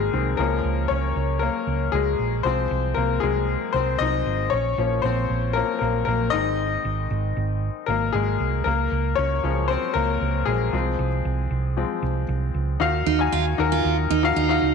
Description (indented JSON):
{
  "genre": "piano-driven pop",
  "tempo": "116 BPM",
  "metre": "4/4",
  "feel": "straight",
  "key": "unclear",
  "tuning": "A4 = 436 Hz",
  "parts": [
    { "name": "bright upright piano", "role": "accompaniment", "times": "0.0-14.7 s", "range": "Eb3 to Ab5", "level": "-23 LUFS", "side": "left 8 dB", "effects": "none" },
    { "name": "hollow-body short-scale fingered electric bass", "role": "bass", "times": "0.0-14.7 s", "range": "Ab1 to Eb2", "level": "-25 LUFS", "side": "right 3 dB", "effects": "none" },
    { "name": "picked steel-string acoustic guitar", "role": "riff", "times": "13.1-14.7 s", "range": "Eb4 to F4", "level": "-23 LUFS", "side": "right 16 dB", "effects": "none" }
  ],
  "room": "moderate echo chamber reverb, RT60 1.7 s",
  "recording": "1960s-style stereo with parts hard left and right",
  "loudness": "-21 LUFS",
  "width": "side -5 dB against mid",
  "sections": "0.0-12.8 A section; 12.8-14.7 B section",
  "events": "upright piano solo 0.0-12.8",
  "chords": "0.4 Db; 2.5 Fm/C; 4.5 Bbm; 6.3 Ab; 8.7 Db; 10.7 Fm/C; 12.8 Ebmadd9"
}